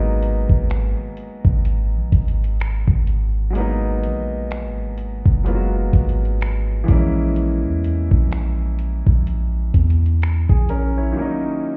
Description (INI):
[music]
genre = contemporary R&B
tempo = 63 BPM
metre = 4/4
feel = swing 58% on 16ths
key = G# minor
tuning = A4 = 439 Hz
[part]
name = clear grand piano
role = accompaniment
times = 0.0-11.8 s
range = D#3 to C#5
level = -27 LUFS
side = equal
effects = none
[part]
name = soft 808-style bass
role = bass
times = 0.0-11.1 s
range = F#1 to E2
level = -22 LUFS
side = equal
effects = none
[part]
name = dusty soul sampler-style drum kit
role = drums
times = 0.2-10.9 s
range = finger snaps, hi-hat, kick drum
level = -18 LUFS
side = equal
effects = none
[sound]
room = little or no reverb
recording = heard muffled through a wall, stone room reverb, EQ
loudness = -19 LUFS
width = mono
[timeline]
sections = 0.0-11.8 A section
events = break 11.2-11.8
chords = 0.0 G#m7; 6.9 A#m7b5; 11.2 D#m7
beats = 0.69 1.65 2.60 | 3.55 4.50 5.46 6.41 | 7.36 8.31 9.27 10.22 | 11.17